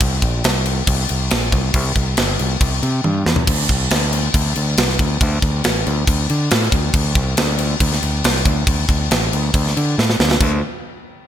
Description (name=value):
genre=heavy metal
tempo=139 BPM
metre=4/4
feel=straight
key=unclear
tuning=A4 = 440 Hz
part: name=growling fingered electric bass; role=bass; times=0.0-10.6 s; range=G1 to D3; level=-19 LUFS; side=equal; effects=overdrive
part: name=tight metal drum kit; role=drums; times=0.0-10.5 s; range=china cymbal, crash cymbal, kick drum, snare drum, toms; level=-17 LUFS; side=equal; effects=gated reverb
room=light reverb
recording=bright 1980s-style digital production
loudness=-15 LUFS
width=side -10 dB against mid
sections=0.0-3.5 A section; 3.5-10.4 A section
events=drum fill 3.0-3.5, 10.0-10.4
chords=none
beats=| 0.01 0.44 0.88 1.31 | 1.74 2.18 2.61 3.04 | 3.48 3.91 4.34 4.78 | 5.21 5.64 6.08 6.51 | 6.94 7.37 7.81 8.24 | 8.67 9.10 9.54 9.97 | 10.40